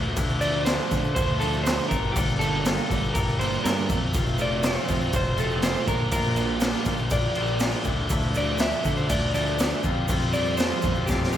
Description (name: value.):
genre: indie rock.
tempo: 121 BPM.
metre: 4/4.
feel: straight.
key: unclear.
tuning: A4 = 438 Hz.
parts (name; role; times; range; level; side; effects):
bright tonewheel organ; sustained chords; 0.0-11.4 s; G4 to D6; -40 LUFS; equal; none.
twangy electric guitar; riff; 0.0-11.4 s; F2 to A4; -33 LUFS; left 6 dB; slapback echo.
fuzz picked electric bass; bass; 0.0-11.4 s; F1 to D3; -29 LUFS; equal; overdrive.
raw garage drum kit; drums; 0.2-11.3 s; crash cymbal, kick drum, snare drum; -25 LUFS; equal; none.
tube shaker; percussion; 0.2-11.4 s; none; -42 LUFS; right 10 dB; none.
clean electric guitar; melody; 0.4-11.4 s; G4 to E5; -29 LUFS; equal; slapback echo.
crunchy overdriven guitar; riff; 0.4-11.4 s; Bb2 to F4; -33 LUFS; right 8 dB; analog chorus, slapback echo.
room: moderate concert hall reverb, RT60 1.9 s, studio reverb.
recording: big arena sound.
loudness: -22 LUFS.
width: side -10 dB against mid.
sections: 0.0-11.4 A section.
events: drum fill 11.1.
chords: 0.0 Dmadd9; 1.9 Gmadd9; 4.1 F; 5.9 Bb6; 7.9 Dmadd9; 9.8 Fsus2.